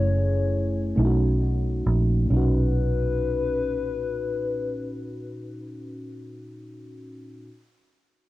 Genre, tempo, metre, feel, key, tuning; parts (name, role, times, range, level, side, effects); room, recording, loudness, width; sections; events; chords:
R&B; 45 BPM (dotted quarters); 6/8; straight; B major; A4 = 440 Hz
hollow clarinet-like synth lead; melody; 0.0-5.7 s; B4 to C#5; -29 LUFS; left 6 dB; chorus, cassette tape, analog delay
mellow FM electric piano; accompaniment; 0.0-7.5 s; A#2 to G#4; -30 LUFS; left 1 dB; chorus
vintage muted fingered electric bass; bass; 0.0-6.0 s; F#1 to B1; -23 LUFS; right 1 dB
light reverb; home recording on cassette; -22 LUFS; side -16 dB against mid
0.0-2.3 A section; 2.3-5.0 B section
0.0 F#m9; 1.0 B9; 2.3 Bmaj9